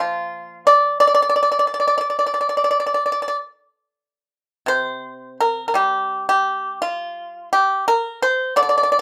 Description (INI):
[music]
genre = chinese traditional, Chinese solo plucked strings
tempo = 78-89 BPM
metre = 4/4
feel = rubato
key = D jue mode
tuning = A4 = 437 Hz
[part]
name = pipa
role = solo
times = 0.0-9.0 s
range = Bb2 to D5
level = -19 LUFS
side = equal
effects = none
[sound]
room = light reverb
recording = none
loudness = -19 LUFS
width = mono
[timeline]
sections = 0.0-4.3 A section; 4.3-9.0 B section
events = none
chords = none